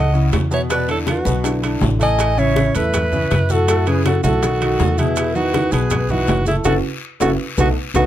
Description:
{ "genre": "Afro-Cuban jazz", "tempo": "161 BPM", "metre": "4/4", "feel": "straight", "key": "E major", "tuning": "A4 = 440 Hz", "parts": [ { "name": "bright alto saxophone", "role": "melody", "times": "0.0-8.0 s", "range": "E4 to D#5", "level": "-21 LUFS", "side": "right 3 dB", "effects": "none" }, { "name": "breathy mellow jazz flute", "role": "second line", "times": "0.0-8.1 s", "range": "G#4 to G#5", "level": "-24 LUFS", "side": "left 4 dB", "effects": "none" }, { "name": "clear baby grand piano", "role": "accompaniment", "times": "0.0-8.1 s", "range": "A2 to B4", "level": "-22 LUFS", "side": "equal", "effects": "none" }, { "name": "upright bass", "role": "bass", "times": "0.0-8.1 s", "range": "F#1 to F#2", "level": "-20 LUFS", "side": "equal", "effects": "none" }, { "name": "congas", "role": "percussion", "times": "0.1-8.0 s", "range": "none", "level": "-25 LUFS", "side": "equal", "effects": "none" }, { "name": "maracas", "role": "percussion", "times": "0.1-8.0 s", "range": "none", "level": "-33 LUFS", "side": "right 8 dB", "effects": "none" }, { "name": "bongos", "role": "percussion", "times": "0.3-8.0 s", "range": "none", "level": "-27 LUFS", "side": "left 8 dB", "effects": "none" }, { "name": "guiro", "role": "percussion", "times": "0.3-8.0 s", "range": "none", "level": "-35 LUFS", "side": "left 7 dB", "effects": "none" }, { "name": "timbales", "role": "percussion", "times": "0.3-8.0 s", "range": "none", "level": "-27 LUFS", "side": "right 6 dB", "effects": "none" } ], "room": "light reverb", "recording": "close, detailed microphones", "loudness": "-15 LUFS", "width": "side -12 dB against mid", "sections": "0.0-8.1 A section", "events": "drum fill 6.7-8.1; band accent 6.7-8.1", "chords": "0.0 F#7(no3); 0.7 Esus2; 2.2 Aadd9; 3.7 F#m7; 4.4 B7; 5.2 Emaj9; 6.7 F#m7; 7.4 B7" }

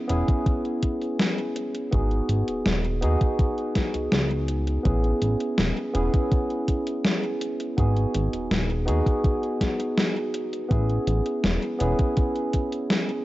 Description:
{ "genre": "vaporwave", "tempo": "82 BPM", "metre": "4/4", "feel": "straight", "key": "A lydian", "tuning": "A4 = 440 Hz", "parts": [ { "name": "barky tine electric piano", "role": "accompaniment", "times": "0.0-13.2 s", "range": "B3 to G#4", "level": "-26 LUFS", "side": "right 1 dB", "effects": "overdrive, lush chorus, vintage 12-bit sampler grit, analog delay" }, { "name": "chorused synth bass", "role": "bass", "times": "0.1-11.9 s", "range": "D#1 to D#2", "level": "-24 LUFS", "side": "equal", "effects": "none" }, { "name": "gated 80s digital drum machine", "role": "drums", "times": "0.1-13.2 s", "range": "hi-hat, snare drum", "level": "-26 LUFS", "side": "left 1 dB", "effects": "gated reverb, gated reverb snare, overdrive" }, { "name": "electronic kick drum", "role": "drums", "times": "0.3-12.7 s", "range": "none", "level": "-23 LUFS", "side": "equal", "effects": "overdrive" } ], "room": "little or no reverb", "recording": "dry, gritty hardware recording, cassette tape, nothing above 7.9 kHz", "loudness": "-22 LUFS", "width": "side -17 dB against mid", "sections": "0.0-13.2 A section", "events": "none", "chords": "0.0 Amaj9 (rootless); 1.9 G#m7; 4.9 Amaj9; 7.8 G#m7; 10.7 Amaj9" }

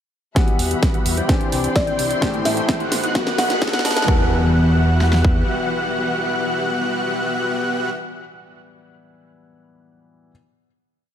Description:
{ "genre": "EDM, festival progressive house", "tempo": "129 BPM", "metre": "4/4", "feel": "straight", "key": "E minor", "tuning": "A4 = 438 Hz", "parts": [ { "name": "clear baby grand piano", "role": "accompaniment", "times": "0.3-10.3 s", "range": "A2 to F#5", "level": "-28 LUFS", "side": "left 2 dB", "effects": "sidechain pumping, ping-pong delay" }, { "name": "dark symphonic string section", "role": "sustained chords", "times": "0.4-7.9 s", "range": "E3 to C6", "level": "-30 LUFS", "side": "left 2 dB", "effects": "sidechain pumping" }, { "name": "wide unison lead", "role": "arpeggios", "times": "0.4-7.9 s", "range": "F#6 to G6", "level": "-27 LUFS", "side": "equal", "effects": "sidechain pumping, ping-pong delay" }, { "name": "dense compressed supersaw", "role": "riff", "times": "0.4-7.9 s", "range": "A3 to G5", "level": "-25 LUFS", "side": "left 1 dB", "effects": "sidechain pumping, low-pass filter, ping-pong delay" }, { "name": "big-room dance drum kit", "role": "drums", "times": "0.4-5.4 s", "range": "kick drum, snare drum", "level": "-19 LUFS", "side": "equal", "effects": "overdrive" }, { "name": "house drum kit", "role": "drums", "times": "0.4-4.1 s", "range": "hi-hat, snare drum", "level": "-24 LUFS", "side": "right 1 dB", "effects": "none" }, { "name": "riser and impact", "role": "sound effects", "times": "2.4-7.9 s", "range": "none", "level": "-29 LUFS", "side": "right 1 dB", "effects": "none" }, { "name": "fat analog bass", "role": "bass", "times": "0.6-5.4 s", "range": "A1 to E2", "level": "-19 LUFS", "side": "equal", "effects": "sidechain pumping" }, { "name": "buzzing kalimba", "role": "melody", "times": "1.8-4.0 s", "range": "D5 to A5", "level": "-25 LUFS", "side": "equal", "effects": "ping-pong delay" } ], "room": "moderate scoring stage reverb, RT60 1.8 s", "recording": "high-pass filter", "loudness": "-17 LUFS", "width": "side -9 dB against mid", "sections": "0.4-4.1 build; 4.1-7.8 final chord", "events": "build-up 0.4-4.1; drum fill 0.4-4.1; filter sweep on supersaw synth 0.4-4.1; filter sweep on analog synth lead 0.4-4.1; filter sweep 0.4-4.1; riser 2.4-4.1", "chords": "0.4 Emadd9; 1.3 Cadd9; 2.2 Am7; 3.2 B; 4.1 Emadd9" }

